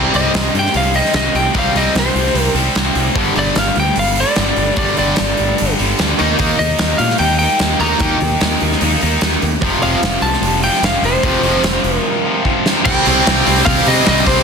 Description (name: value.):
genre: hard rock.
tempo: 149 BPM.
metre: 4/4.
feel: straight.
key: C minor.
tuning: A4 = 440 Hz.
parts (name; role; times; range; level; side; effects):
distorted electric guitar; riff; 0.0-14.4 s; F2 to Eb4; -19 LUFS; right 13 dB; overdrive.
overdriven electric guitar; riff; 0.0-12.9 s; F2 to Eb4; -19 LUFS; left 1 dB; spring reverb.
tight distorted guitar; riff; 0.0-14.4 s; F2 to Eb4; -19 LUFS; left 14 dB; distortion.
modern bright picked electric bass; bass; 0.0-14.4 s; F1 to C3; -20 LUFS; equal; none.
big rock drum kit; drums; 0.1-14.4 s; crash cymbal, hi-hat, kick drum, snare drum; -18 LUFS; right 1 dB; none.
lightly driven lead guitar; melody; 0.2-14.4 s; C5 to Bb5; -18 LUFS; equal; slapback echo.
room: light reverb.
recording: dense, heavily limited modern master.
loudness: -12 LUFS.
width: side -6 dB against mid.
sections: 0.0-12.9 A section; 12.9-14.4 B section.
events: drum fill 12.5-12.9.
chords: 0.0 C5; 3.2 G5; 6.2 Eb; 9.6 F5; 12.9 Cm.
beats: 0.34 0.75 1.15 | 1.55 1.96 2.36 2.76 | 3.17 3.57 3.97 4.38 | 4.78 5.18 5.59 5.99 | 6.40 6.80 7.20 7.61 | 8.01 8.41 8.82 9.22 | 9.63 10.03 10.43 10.84 | 11.24 11.64 12.05 12.45 | 12.85 13.26 13.66 14.06.